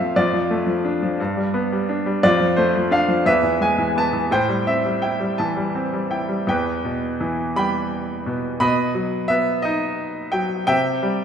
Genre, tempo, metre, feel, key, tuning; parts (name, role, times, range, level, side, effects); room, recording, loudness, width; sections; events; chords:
classical, lyrical solo piano; 58 BPM (dotted quarters); 6/8; rubato; A minor, E harmonic minor from 6.5 s; A4 = 440 Hz
bright grand piano; solo; 0.0-11.2 s; E2 to B5; -18 LUFS; equal
moderate concert hall reverb, RT60 1.8 s; recorded in a church or concert hall; -18 LUFS; side -8 dB against mid
0.0-6.5 A section; 6.5-11.2 B section
0.2 Dm/F; 1.2 G; 2.2 Dm/F; 3.3 E; 4.3 Am7; 6.5 Em; 8.6 B; 10.7 C